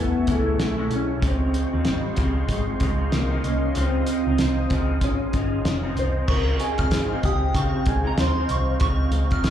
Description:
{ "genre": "indie pop, bedroom pop", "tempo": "95 BPM", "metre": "4/4", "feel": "swing 60% on 16ths", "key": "Db lydian", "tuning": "A4 = 440 Hz", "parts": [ { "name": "mellow electric guitar", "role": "melody", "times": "0.0-8.7 s", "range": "G3 to C5", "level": "-26 LUFS", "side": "equal", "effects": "ensemble chorus, slapback echo, tape echo" }, { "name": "electric guitar through a small old amp", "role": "accompaniment", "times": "0.0-9.5 s", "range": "A2 to E4", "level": "-30 LUFS", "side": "left 1 dB", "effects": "ensemble chorus, vibrato effect, slapback echo" }, { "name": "warm analog pad", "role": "sustained chords", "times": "0.0-9.5 s", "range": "C4 to Eb6", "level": "-34 LUFS", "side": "right 2 dB", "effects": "chorus" }, { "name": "vintage muted picked electric bass", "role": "bass", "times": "0.0-9.5 s", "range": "F1 to Db3", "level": "-24 LUFS", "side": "equal", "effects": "none" }, { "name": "cloth-damped thuddy drum kit", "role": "drums", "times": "0.3-9.5 s", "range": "crash cymbal, hi-hat, kick drum, snare drum", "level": "-26 LUFS", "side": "equal", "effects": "none" }, { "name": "soft synth bell", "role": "second line", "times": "6.3-9.4 s", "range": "Bb5 to F6", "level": "-31 LUFS", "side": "right 3 dB", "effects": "phaser, lush chorus, slapback echo, tape echo" } ], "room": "light reverb, small room ambience", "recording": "live gig heard through the venue's PA, club reverb", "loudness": "-20 LUFS", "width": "side -10 dB against mid", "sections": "0.0-6.3 A section; 6.3-9.5 B section", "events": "none", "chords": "0.0 Amaj7; 1.2 Dbmaj9" }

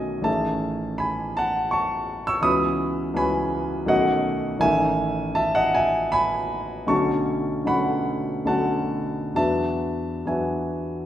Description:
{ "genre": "classical, impressionist solo piano", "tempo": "65-84 BPM", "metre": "3/4", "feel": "rubato", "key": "unclear", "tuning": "A4 = 442 Hz", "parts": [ { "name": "warm concert grand piano", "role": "solo", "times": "0.0-11.1 s", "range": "A1 to E6", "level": "-21 LUFS", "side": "equal", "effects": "none" } ], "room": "wet recital hall reverb, RT60 1.6 s", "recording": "heard from further back in the room", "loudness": "-21 LUFS", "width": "side -11 dB against mid", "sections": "0.0-11.1 A section", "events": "none", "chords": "0.3 Amaj7#11; 2.5 C#m11; 3.9 B9; 4.6 Amaj7#11; 6.9 Bm9; 9.4 E9" }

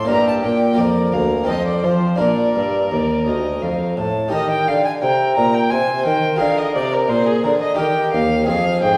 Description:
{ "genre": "classical, baroque-style sonata movement with continuo", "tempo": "86 BPM", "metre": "3/4", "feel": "straight", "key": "Bb major, Eb major from 4.3 s", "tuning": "A4 = 440 Hz", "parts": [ { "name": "clear violin", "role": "melody", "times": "0.0-9.0 s", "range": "G4 to Bb5", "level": "-29 LUFS", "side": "equal", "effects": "none" }, { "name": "clear violin", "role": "second line", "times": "0.0-9.0 s", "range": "G4 to Bb5", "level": "-24 LUFS", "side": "equal", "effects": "none" }, { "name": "harpsichord", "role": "accompaniment", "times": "0.0-9.0 s", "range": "D2 to Bb4", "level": "-22 LUFS", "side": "equal", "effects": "none" }, { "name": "warm bassoon", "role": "bass", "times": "0.0-9.0 s", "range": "D2 to F3", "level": "-23 LUFS", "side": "equal", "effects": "none" } ], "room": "wet recital hall reverb, RT60 1.4 s", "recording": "heard from further back in the room", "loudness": "-18 LUFS", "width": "mono", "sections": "0.0-4.3 A section; 4.3-9.0 A section", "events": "none", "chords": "0.1 Gm; 0.8 Bb/F; 1.5 F; 2.2 Bb; 4.3 Eb; 6.4 Bb7; 7.8 Eb" }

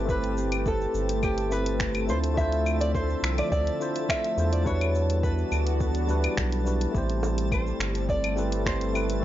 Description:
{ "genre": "sunset chillout", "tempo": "105 BPM", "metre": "4/4", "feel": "straight", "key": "A minor", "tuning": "A4 = 441 Hz", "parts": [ { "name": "tine electric piano", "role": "accompaniment", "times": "0.0-9.2 s", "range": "G3 to C5", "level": "-31 LUFS", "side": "equal", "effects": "auto-pan, tape echo" }, { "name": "lush unison pad", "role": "sustained chords", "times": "0.0-9.2 s", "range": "D3 to E5", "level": "-33 LUFS", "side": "equal", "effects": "chorus" }, { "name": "round analog bass", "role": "bass", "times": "0.0-9.2 s", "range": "G1 to E2", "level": "-27 LUFS", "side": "equal", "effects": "tube saturation" }, { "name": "twinkling granular texture", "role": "texture", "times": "0.0-9.2 s", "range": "A4 to A5", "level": "-39 LUFS", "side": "left 1 dB", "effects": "built-in reverb" }, { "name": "nylon-string guitar", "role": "melody", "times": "0.1-9.2 s", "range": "G4 to E5", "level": "-31 LUFS", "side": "right 1 dB", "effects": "analog delay" }, { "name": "electronic kick drum", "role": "drums", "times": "0.1-8.8 s", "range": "none", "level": "-30 LUFS", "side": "equal", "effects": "overdrive" }, { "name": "smooth R&B drum kit", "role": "drums", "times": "0.1-9.2 s", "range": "cabasa, claves, finger snaps, hi-hat", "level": "-33 LUFS", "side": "left 2 dB", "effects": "none" }, { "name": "bongos", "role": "percussion", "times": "7.2-8.5 s", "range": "none", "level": "-35 LUFS", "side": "right 4 dB", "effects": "none" } ], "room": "digital ambience", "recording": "dry, gritty hardware recording, nothing above 7.5 kHz", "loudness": "-24 LUFS", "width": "side -13 dB against mid", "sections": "0.0-9.2 A section", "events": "none", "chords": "0.0 Am9; 2.1 Dm9; 4.7 Em9; 6.9 Am9" }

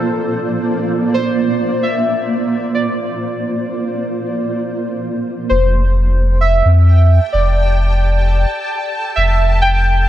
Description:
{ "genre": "IDM", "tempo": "131 BPM", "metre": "4/4", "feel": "straight", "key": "F major", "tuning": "A4 = 440 Hz", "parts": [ { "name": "warbly lo-fi synth keys", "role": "melody", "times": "0.0-10.0 s", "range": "A4 to G5", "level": "-19 LUFS", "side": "right 1 dB", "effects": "chorus, phaser, digital delay" }, { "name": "granular cloud pad", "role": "sustained chords", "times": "0.0-10.1 s", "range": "Bb3 to A5", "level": "-19 LUFS", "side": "right 1 dB", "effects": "built-in reverb" }, { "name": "warm sub bass", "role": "bass", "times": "5.5-10.1 s", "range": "F1 to F2", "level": "-12 LUFS", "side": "equal", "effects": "tube saturation" } ], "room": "light reverb", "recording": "dark, warm production", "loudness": "-13 LUFS", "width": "side -12 dB against mid", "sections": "0.0-5.5 A section; 5.5-10.1 B section", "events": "filter sweep on ambient pad 0.0-5.5", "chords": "0.0 Bbadd9; 5.5 Fmaj7" }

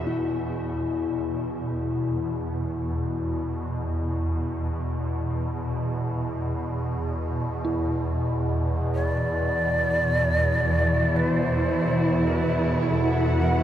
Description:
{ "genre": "dark ambient drone", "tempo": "free time", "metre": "none", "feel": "none", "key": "unclear", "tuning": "A4 = 438 Hz", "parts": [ { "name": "dark symphonic cello section", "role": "sustained chords", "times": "0.0-0.1, 9.0-13.6 s", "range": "B2 to F#5", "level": "-26 LUFS", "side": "equal", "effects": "none" }, { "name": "swarming drone", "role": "drone", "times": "0.0-13.6 s", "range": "E2 to B2", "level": "-26 LUFS", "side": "equal", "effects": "built-in reverb" }, { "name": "bronze singing bowl", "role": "texture", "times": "0.0-13.6 s", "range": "E4", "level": "-33 LUFS", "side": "left 4 dB", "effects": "none" }, { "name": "dark detuned synth bell", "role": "arpeggios", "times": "7.6-13.6 s", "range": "E4", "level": "-34 LUFS", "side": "equal", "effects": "chorus, tape echo" }, { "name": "breathy mellow shakuhachi", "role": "melody", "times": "8.9-13.6 s", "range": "A4 to D5", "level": "-26 LUFS", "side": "right 1 dB", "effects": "tape echo" } ], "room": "wet huge ambient reverb, RT60 7.5 s", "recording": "dreamy mix soaked in reverb", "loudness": "-23 LUFS", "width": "side -11 dB against mid", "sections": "0.1-13.6 A section", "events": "none", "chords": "0.1 E5" }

